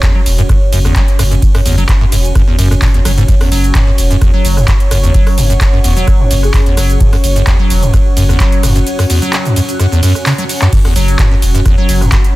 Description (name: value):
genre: acid house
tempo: 129 BPM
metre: 4/4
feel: straight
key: unclear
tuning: A4 = 440 Hz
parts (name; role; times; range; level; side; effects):
- dark analog pad; sustained chords; 0.0-12.4 s; C#5; -24 LUFS; right 4 dB; chorus, sidechain pumping
- acid bass, square; riff; 0.0-12.2 s; E2 to F#3; -15 LUFS; equal; wide subtle chorus, sidechain pumping
- booming analog drum machine; drums; 0.0-12.3 s; crash cymbal, handclaps, hi-hat, ride cymbal, rim click, shaker; -19 LUFS; right 1 dB; none
- electronic kick drum; drums; 0.0-12.2 s; none; -11 LUFS; equal; none
- granular cloud pad; texture; 0.0-12.4 s; C#4 to F#6; -22 LUFS; equal; built-in reverb, sidechain pumping
- warm sub bass; bass; 0.3-12.1 s; E1 to F#1; -13 LUFS; equal; sidechain pumping
- breathy flute-like synth lead; melody; 6.4-6.6 s; G#4; -26 LUFS; left 3 dB; ensemble chorus, tape echo
room: digital ambience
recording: dense, heavily limited modern master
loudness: -8 LUFS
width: side -18 dB against mid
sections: 0.0-12.4 A section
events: kick drops out 8.9-10.7; drum fill 10.3-10.7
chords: 0.0 F#5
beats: 0.03 0.49 0.96 | 1.42 1.89 2.35 2.82 | 3.28 3.75 4.21 4.68 | 5.14 5.61 6.08 6.54 | 7.00 7.47 7.93 8.40 | 8.87 9.33 9.79 10.26 | 10.73 11.19 11.66 12.12